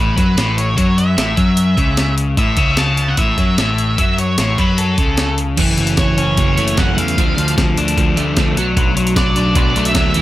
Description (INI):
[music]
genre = indie rock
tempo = 150 BPM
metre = 4/4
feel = straight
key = A major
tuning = A4 = 439 Hz
[part]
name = octave-fuzz lead guitar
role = melody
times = 0.0-10.2 s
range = A4 to A5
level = -21 LUFS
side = right 2 dB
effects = distortion, tape echo
[part]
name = crunchy overdriven guitar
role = riff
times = 0.0-10.2 s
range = A2 to D4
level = -17 LUFS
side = left 3 dB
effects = none
[part]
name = growling picked electric bass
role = bass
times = 0.0-10.2 s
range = E1 to F#2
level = -19 LUFS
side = equal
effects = overdrive
[part]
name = breakbeat sampler-style drum kit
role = drums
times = 0.2-10.2 s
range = crash cymbal, hi-hat, kick drum, snare drum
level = -18 LUFS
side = equal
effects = none
[part]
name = twelve-string electric guitar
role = riff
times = 5.6-10.2 s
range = F#2 to E4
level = -22 LUFS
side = right 7 dB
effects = ensemble chorus
[sound]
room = light reverb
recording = none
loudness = -13 LUFS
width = side -15 dB against mid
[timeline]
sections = 0.0-5.6 A section; 5.6-10.2 B section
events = break 5.4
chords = 0.0 A; 5.6 F#m7; 7.2 Dm; 8.6 Bm7